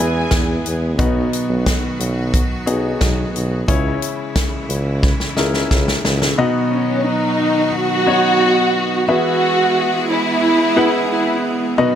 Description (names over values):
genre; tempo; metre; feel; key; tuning
piano-driven pop; 89 BPM; 4/4; straight; B major; A4 = 440 Hz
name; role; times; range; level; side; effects
dark studio violin section; melody; 0.0-0.7, 6.7-11.6 s; C#4 to G#5; -16 LUFS; right 1 dB; none
clear upright piano; accompaniment; 0.0-12.0 s; B2 to F#5; -20 LUFS; left 2 dB; none
bright studio string section; sustained chords; 0.0-12.0 s; C#3 to G#4; -25 LUFS; right 3 dB; none
warm tuba; bass; 0.0-6.3 s; B1 to E2; -21 LUFS; right 1 dB; none
natural country drum kit; drums; 0.3-6.4 s; hi-hat, kick drum, snare drum; -18 LUFS; equal; none
room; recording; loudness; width
light reverb, small room reverb; none; -15 LUFS; side -9 dB against mid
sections
0.0-6.4 A section; 6.4-12.0 B section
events
drum fill 5.0-6.4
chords
0.0 E; 1.0 B; 3.7 C#m; 6.4 B; 9.1 E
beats
0.32 | 0.99 1.67 2.34 3.02 | 3.69 4.36 5.04 5.71 | 6.39 7.06 7.73 8.41 | 9.08 9.76 10.43 11.10 | 11.78